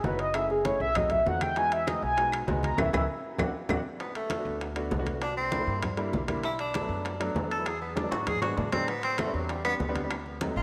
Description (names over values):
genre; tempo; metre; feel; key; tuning
Afro-Cuban jazz; 197 BPM; 4/4; straight; unclear; A4 = 439 Hz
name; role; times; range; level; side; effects
mellow horn-like synth lead; melody; 0.0-3.8 s; G#4 to A#5; -30 LUFS; equal; chorus
warm concert grand piano; accompaniment; 0.0-10.6 s; F#3 to G#4; -37 LUFS; equal; none
upright bass; bass; 0.0-10.6 s; F#1 to A2; -38 LUFS; equal; none
bongos; percussion; 0.0-10.6 s; none; -41 LUFS; equal; none
congas; percussion; 0.0-10.6 s; none; -39 LUFS; equal; none
timbales; percussion; 0.2-10.6 s; none; -40 LUFS; equal; none
claves; percussion; 0.3-3.8, 9.2-10.3 s; none; -43 LUFS; equal; none
bright tenor saxophone; second line; 4.0-10.6 s; F#3 to A4; -34 LUFS; equal; none
room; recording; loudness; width
wet plate reverb, RT60 3.6 s; none; -29 LUFS; mono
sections
0.0-4.0 A section; 4.0-10.6 A section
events
soft synth lead solo 0.0-4.0; drum fill 2.8-4.0, 8.1-8.9; band accent 2.8-4.0; tenor saxophone solo 4.0-10.6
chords
0.3 F#m9; 1.0 B7b9; 1.6 Emaj7; 2.8 C#m7; 3.4 D7; 4.0 Bm7; 5.2 C9; 6.4 Bm7; 7.7 E7; 8.9 Am11; 10.1 D7b9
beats
0.04 | 0.35 0.65 0.96 1.26 | 1.56 1.87 2.17 2.48 | 2.78 3.09 3.39 3.70 | 4.00 4.31 4.61 4.92 | 5.22 5.53 5.83 6.13 | 6.44 6.75 7.05 7.36 | 7.66 7.96 8.27 8.57 | 8.88 9.19 9.49 9.79 | 10.10 10.40